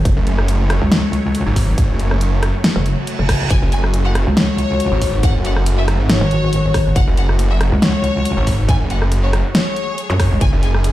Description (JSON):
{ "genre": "heavy wobble dubstep", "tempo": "139 BPM", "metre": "4/4", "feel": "swing 54% on 16ths, half-time", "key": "F# minor", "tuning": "A4 = 437 Hz", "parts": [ { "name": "supersaw pad", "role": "sustained chords", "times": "0.0-10.9 s", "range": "F#3 to C#5", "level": "-26 LUFS", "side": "equal", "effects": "phaser, sidechain pumping" }, { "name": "metallic wobble bass", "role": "bass", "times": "0.0-10.5 s", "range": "F#1 to F#2", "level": "-17 LUFS", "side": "equal", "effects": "distortion, chorus, overdrive" }, { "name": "big-room dance drum kit", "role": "drums", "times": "0.1-10.9 s", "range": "hi-hat, rim click, snare drum", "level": "-20 LUFS", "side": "equal", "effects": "none" }, { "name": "electronic kick drum", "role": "drums", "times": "0.1-10.5 s", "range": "none", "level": "-17 LUFS", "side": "equal", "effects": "none" }, { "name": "snarling distorted saw bass", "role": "bass", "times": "0.2-10.9 s", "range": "F#1 to G#1", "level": "-16 LUFS", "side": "equal", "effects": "distortion, overdrive" }, { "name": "reverse cymbal and zap", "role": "sound effects", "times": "2.8-3.5, 10.1-10.2 s", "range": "none", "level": "-28 LUFS", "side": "right 2 dB", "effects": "none" }, { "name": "clear studio violin section", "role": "melody", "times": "3.5-10.7 s", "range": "C#5 to G#5", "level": "-24 LUFS", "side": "left 3 dB", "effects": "ping-pong delay" } ], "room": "little or no reverb", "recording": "played on a big sound system in a bare room, large studio reverb", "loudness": "-14 LUFS", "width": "side -14 dB against mid", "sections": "0.0-10.9 A section", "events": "reverse cymbal 2.8-3.5", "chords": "0.0 F#madd9" }